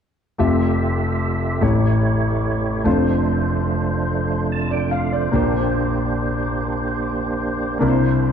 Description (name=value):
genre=slow gospel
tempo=48 BPM (dotted quarters)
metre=6/8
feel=straight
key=F major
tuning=A4 = 440 Hz
part: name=clear concert grand piano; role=accompaniment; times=0.4-8.3 s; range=F1 to F5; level=-19 LUFS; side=left 2 dB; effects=none
part: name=tonewheel organ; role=sustained chords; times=0.4-8.3 s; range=F2 to A5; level=-22 LUFS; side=right 4 dB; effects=overdrive, chorus vibrato, slow rotary speaker
room=wet recital hall reverb, RT60 1.3 s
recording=none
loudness=-18 LUFS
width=side -8 dB against mid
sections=0.4-8.3 A section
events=none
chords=0.4 Fmaj9; 1.6 A7; 2.9 Dm7/F; 5.3 Bb69; 7.8 C9